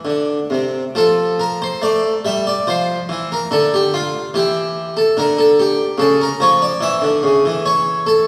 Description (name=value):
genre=classical, baroque-style suite movement for harpsichord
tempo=72 BPM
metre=3/4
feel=rubato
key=unclear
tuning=A4 = 441 Hz
part: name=harpsichord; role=solo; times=0.0-8.3 s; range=C3 to E5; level=-17 LUFS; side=equal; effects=none
room=wet concert hall reverb, RT60 1.9 s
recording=recorded in a church or concert hall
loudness=-17 LUFS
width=mono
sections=0.9-8.3 A section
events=none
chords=0.0 Am; 0.9 Bbmaj9#11; 3.5 Dmadd11; 6.0 C#m6